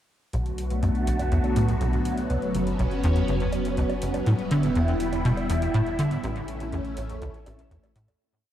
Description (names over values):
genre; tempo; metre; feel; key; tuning
ambient, sequencer-driven space music; 122 BPM; 4/4; straight; B minor; A4 = 440 Hz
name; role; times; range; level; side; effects
phased string machine; sustained chords; 0.3-8.2 s; D3 to F#4; -27 LUFS; equal; ensemble chorus, phaser, shimmer reverb
tight sequencer bass; riff; 0.3-8.1 s; F#1 to D3; -25 LUFS; equal; ensemble chorus, analog delay
warm sub bass; bass; 0.3-8.2 s; E1 to B1; -32 LUFS; equal; none
electronic hi-hat and woodblock; percussion; 0.3-8.2 s; none; -41 LUFS; right 1 dB; analog delay
room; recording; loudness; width
moderate plate reverb, RT60 3.8 s; dark, warm production; -23 LUFS; side -11 dB against mid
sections
0.3-8.2 A section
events
fade-out 5.6-8.2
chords
0.3 Bm7; 2.3 F#sus4; 4.3 Em; 6.2 A